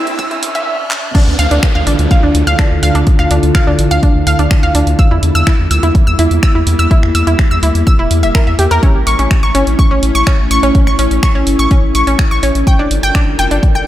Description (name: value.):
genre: melodic techno.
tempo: 125 BPM.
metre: 4/4.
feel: straight.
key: D harmonic minor.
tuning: A4 = 440 Hz.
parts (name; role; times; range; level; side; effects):
evolving wavetable pad; sustained chords; 0.0-13.9 s; E2 to Bb4; -18 LUFS; equal; chorus, built-in reverb, sidechain pumping.
analog drone; drone; 0.0-0.7 s; D3 to D4; -37 LUFS; equal; none.
riser, noise sweep and downlifter; sound effects; 0.0-5.0 s; none; -23 LUFS; right 2 dB; none.
house drum kit; drums; 0.1-13.7 s; crash cymbal, finger snaps, handclaps, hi-hat; -22 LUFS; right 1 dB; sidechain pumping on hats, sidechain pumping on cymbals.
analog pluck; arpeggios; 0.2-13.8 s; C#4 to G6; -15 LUFS; equal; chorus, sidechain pumping, tape echo.
electronic kick drum; drums; 0.2-13.7 s; none; -11 LUFS; equal; none.
round analog bass; bass; 1.3-13.8 s; E1 to E2; -14 LUFS; equal; sidechain pumping.
room: moderate lush hall reverb, RT60 1.9 s.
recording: dreamy mix soaked in reverb, high-pass filter.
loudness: -9 LUFS.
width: side -13 dB against mid.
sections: 0.0-1.1 A section; 1.1-13.9 B section.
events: build-up 0.0-1.1; riser 0.0-1.1; noise sweep 0.0-1.1; filter sweep on synth arpeggio sound 0.0-1.1; filter sweep 0.0-1.1; drum fill 0.9; drop 1.1-13.9.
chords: 0.0 Edim; 1.1 Dmadd9; 5.0 Edim; 8.8 A; 12.7 Gm7.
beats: 0.19 0.67 | 1.15 1.63 2.11 2.59 | 3.07 3.55 4.03 4.51 | 4.99 5.47 5.95 6.43 | 6.91 7.39 7.87 8.35 | 8.83 9.31 9.79 10.27 | 10.75 11.23 11.71 12.19 | 12.67 13.15 13.63.